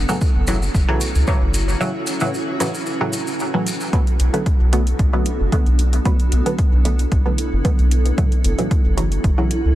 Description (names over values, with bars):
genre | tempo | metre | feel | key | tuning
dub techno | 113 BPM | 4/4 | swing 53% on 16ths | B minor | A4 = 440 Hz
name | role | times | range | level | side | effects
granular cloud pad | sustained chords | 0.0-9.8 s | B3 to A4 | -26 LUFS | right 1 dB | built-in reverb, sidechain pumping
soft dub sub bass | bass | 0.0-9.7 s | F#1 to C#2 | -18 LUFS | equal | tube saturation, sidechain pumping
filtered dub chord stab | stabs | 0.1-9.5 s | A2 to B3 | -24 LUFS | right 1 dB | chorus, phaser, sidechain pumping, dub echo
maracas | percussion | 0.1-3.9 s | none | -30 LUFS | left 2 dB | none
electronic kick drum | drums | 0.2-9.4 s | none | -18 LUFS | equal | overdrive
electronic hi-hat | drums | 0.5-9.6 s | none | -30 LUFS | equal | none
room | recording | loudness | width
digital ambience | dense, heavily limited modern master, lossy compression artefacts | -16 LUFS | side -14 dB against mid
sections
0.0-3.9 A section; 3.9-9.8 A section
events
break 1.8-3.9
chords
0.0 F#m7; 3.9 Bm7; 8.2 F#m7